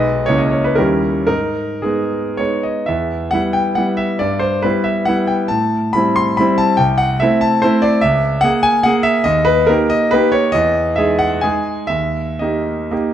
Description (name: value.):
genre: classical, romantic triple-time dance for piano with dotted rhythms.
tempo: 103-156 BPM.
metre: 3/4.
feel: rubato.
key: E minor.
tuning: A4 = 440 Hz.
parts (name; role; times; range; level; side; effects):
clear concert grand piano; solo; 0.0-13.1 s; B1 to C6; -14 LUFS; equal; none.
room: moderate recital hall reverb, RT60 1.4 s.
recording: none.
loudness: -14 LUFS.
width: side -10 dB against mid.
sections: 0.0-2.9 A section; 2.9-13.1 B section.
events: none.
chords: 0.3 A#dim/C#; 0.8 D#7b9; 1.3 G#m; 2.9 Em; 4.2 Em/G; 5.5 Am7; 6.8 Am/C; 8.0 A#m7b5/C#; 9.3 D#; 10.5 Emaj7; 11.9 D#.